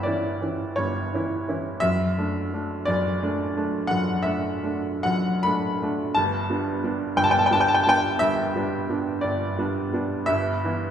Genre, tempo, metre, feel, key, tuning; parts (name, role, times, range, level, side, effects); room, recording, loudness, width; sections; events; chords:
classical, romantic nocturne for solo piano; 48-61 BPM (dotted quarters); 12/8; rubato; G major; A4 = 437 Hz
clear upright piano; solo; 0.0-10.9 s; F#1 to B5; -22 LUFS; equal
wet recital hall reverb, RT60 1.5 s; heard from further back in the room; -22 LUFS; side -8 dB against mid
0.0-10.9 A section
0.0 A7/G; 1.8 D/F#; 6.2 G; 10.3 Em/G